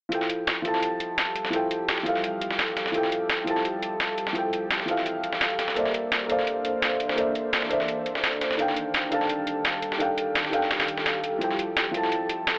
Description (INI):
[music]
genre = liquid drum and bass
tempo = 170 BPM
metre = 4/4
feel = straight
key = F major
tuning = A4 = 440 Hz
[part]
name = felt-muted upright piano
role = accompaniment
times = 0.1-12.6 s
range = Eb3 to A5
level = -26 LUFS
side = equal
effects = tape echo
[part]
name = ethereal airy pad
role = sustained chords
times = 1.0-12.6 s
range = Eb3 to C5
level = -34 LUFS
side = equal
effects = ensemble chorus, built-in reverb
[part]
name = dusty soul sampler-style drum kit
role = drums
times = 0.1-12.6 s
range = hi-hat, snare drum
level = -26 LUFS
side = equal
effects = high-pass filter on hats, high-pass filter on snare
[part]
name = electronic hi-hat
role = drums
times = 0.1-12.5 s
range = none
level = -36 LUFS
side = equal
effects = none
[sound]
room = moderate lush hall reverb, RT60 1.9 s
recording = telephone sound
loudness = -23 LUFS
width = side -31 dB against mid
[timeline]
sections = 0.1-12.6 A section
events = none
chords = 0.1 Fmaj9; 5.8 Bbmaj9#11; 8.6 Ebmaj9#11; 11.4 Fmaj9